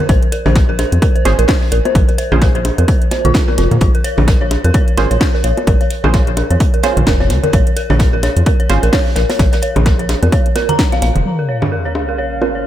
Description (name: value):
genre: minimal techno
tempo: 129 BPM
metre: 4/4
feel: swing 58% on 16ths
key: Bb minor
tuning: A4 = 441 Hz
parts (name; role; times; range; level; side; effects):
- dark detuned synth bell; riff; 0.1-12.6 s; F4 to Bb5; -19 LUFS; equal; chorus, phaser, sidechain pumping, low-pass filter, analog delay
- rubbery square bass; bass; 0.1-11.2 s; F1 to Bb2; -14 LUFS; equal; tube saturation, sidechain pumping
- electronic kick drum; drums; 0.1-10.9 s; none; -14 LUFS; equal; overdrive
- house drum kit; drums; 0.1-11.2 s; hi-hat, snare drum; -22 LUFS; equal; overdrive, low-pass filter on hats, low-pass filter on snare, low-pass filter on cymbals, low-pass filter on room
- vintage brush drum kit; drums; 0.1-11.2 s; hi-hat, snare drum; -30 LUFS; right 2 dB; sidechain pumping on hats, high-pass filter on hats, high-pass filter on snare, high-pass filter on room
- bongos and congas; percussion; 0.5-12.5 s; none; -21 LUFS; right 2 dB; ping-pong delay
- filtered dub chord stab; stabs; 1.3-8.8, 12.4-12.5 s; Db4 to C5; -22 LUFS; right 3 dB; chorus, ping-pong delay
- sub drop; sound effects; 11.3-12.7 s; none; -20 LUFS; left 1 dB; none
- bubbling stepped-filter texture; texture; 11.7-12.7 s; F5; -25 LUFS; right 1 dB; chorus, built-in reverb, sidechain pumping
- deep dark ambient pad; texture; 11.8-12.7 s; Db4 to Ab5; -29 LUFS; equal; chorus, built-in reverb, sidechain pumping
room: digital ambience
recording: none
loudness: -11 LUFS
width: side -12 dB against mid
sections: 0.0-11.3 A section; 11.3-12.7 B section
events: drop 0.0-11.3; impact 11.3-12.7; filter sweep on synth bell 11.3-12.7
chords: 0.0 Bbm7